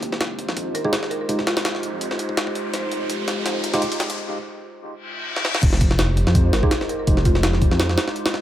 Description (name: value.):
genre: drum and bass, jungle.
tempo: 166 BPM.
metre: 4/4.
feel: swing 54% on 16ths.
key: F minor.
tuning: A4 = 440 Hz.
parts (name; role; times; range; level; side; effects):
warbly tape-like pad; sustained chords; 0.0-8.4 s; Ab3 to C5; -28 LUFS; equal; chorus, built-in reverb.
dark detuned saw bass; bass; 0.0-8.0 s; F1 to F2; -23 LUFS; equal; high-pass filter.
jungle sampler-style drum kit; drums; 0.0-8.4 s; crash cymbal, hi-hat, kick drum, snare drum; -21 LUFS; equal; high-pass filter on hats, high-pass filter on kick, high-pass filter on snare, high-pass filter on cymbals.
riser, reverse cymbal and impact; sound effects; 1.5-7.1 s; none; -30 LUFS; left 1 dB; none.
buzzing marimba with medium mallets; melody; 0.7-1.8, 6.5-7.5 s; F4 to Bb4; -30 LUFS; equal; vintage 12-bit sampler grit, dub echo.
tine electric piano; stabs; 0.8-1.4, 3.7-3.8, 6.6-7.2 s; Ab3 to G4; -29 LUFS; right 2 dB; overdrive, vintage 12-bit sampler grit, low-pass filter, dub echo.
room: moderate spring reverb, RT60 2.3 s.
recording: echo-heavy mix.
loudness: -19 LUFS.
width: side -12 dB against mid.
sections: 0.0-5.6 A section; 5.6-8.4 B section.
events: build-up 0.0-5.6; filter sweep on tine electric piano 0.0-5.6; riser 1.5-4.2; drum fill 2.7-4.2, 5.4; break 4.2-5.6; reverse cymbal 5.0-5.6; drop 5.6-8.4; impact 5.6-7.1.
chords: 0.0 Fm9.